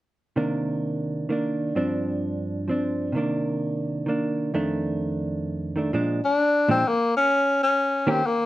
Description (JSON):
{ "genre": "jazz", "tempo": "130 BPM", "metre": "3/4", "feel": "swing 65% on 8ths", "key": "Bb major", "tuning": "A4 = 439 Hz", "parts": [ { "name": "hollow-body jazz guitar", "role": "accompaniment", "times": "0.4-8.2 s", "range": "F2 to G4", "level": "-24 LUFS", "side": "right 1 dB", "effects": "none" }, { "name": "clear tenor saxophone", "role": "melody", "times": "6.2-8.5 s", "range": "Bb3 to D4", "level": "-19 LUFS", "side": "left 2 dB", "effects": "none" } ], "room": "moderate large studio reverb, RT60 0.8 s", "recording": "none", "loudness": "-22 LUFS", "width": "side -15 dB against mid", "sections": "0.4-5.9 A section; 5.9-8.5 B section", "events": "none", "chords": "0.4 Cm9; 1.8 G7sus4; 3.1 Cm9; 4.5 F6; 5.9 Bb7; 7.3 Eb7" }